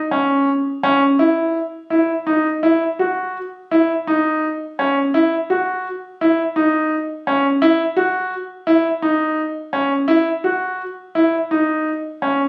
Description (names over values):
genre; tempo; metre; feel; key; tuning
contemporary instrumental, contemporary; 169 BPM (eighths); 7/8; straight; unclear; A4 = 440 Hz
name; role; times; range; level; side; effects
bright grand piano; solo; 0.1-12.4 s; C#4 to F#4; -18 LUFS; equal; none
room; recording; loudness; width
moderate studio reverb, RT60 0.8 s; recorded on a phone in the room, club reverb; -18 LUFS; mono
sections
0.0-2.6 A section; 2.6-12.5 B section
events
none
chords
none